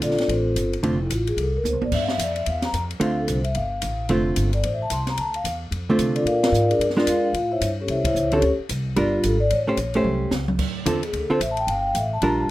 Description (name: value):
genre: jazz, small-group swing and bop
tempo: 221 BPM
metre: 4/4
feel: swing 61% on 8ths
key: D minor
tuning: A4 = 440 Hz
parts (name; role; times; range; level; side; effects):
- vibraphone with soft mallets; melody; 0.0-12.5 s; C4 to C6; -23 LUFS; left 1 dB; none
- hollow-body jazz guitar; accompaniment; 0.0-1.0, 3.0-12.5 s; D3 to B#4; -21 LUFS; right 2 dB; none
- upright bass; bass; 0.0-12.5 s; F1 to C3; -26 LUFS; equal; none
- open jazz drum kit; drums; 0.0-12.3 s; crash cymbal, hi-hat, kick drum, ride cymbal, snare drum, toms; -30 LUFS; equal; none
room: small room ambience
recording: rough home demo mix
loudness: -20 LUFS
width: side -16 dB against mid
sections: 0.0-10.6 A section; 10.6-12.5 B section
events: drum fill 1.6, 10.1-10.6; band accent 6.4, 8.0; vibraphone solo 10.6-12.5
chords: 0.0 Dm7; 1.9 Em; 3.0 Dm7; 6.3 Bb7; 7.3 A7#9; 8.4 Csus2; 9.0 Gm7; 9.5 A7#9; 10.6 Dm7; 11.7 Gm7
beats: 0.02 0.29 0.56 | 0.83 1.10 1.38 1.65 | 1.92 2.19 2.46 2.73 | 3.01 3.28 3.55 3.82 | 4.09 4.37 4.64 4.91 | 5.18 5.45 5.72 5.99 | 6.26 6.54 6.81 7.08 | 7.35 7.62 7.89 8.16 | 8.43 8.70 8.97 9.24 | 9.51 9.78 10.05 10.32 | 10.59 10.86 11.13 11.40 | 11.67 11.94 12.21 12.48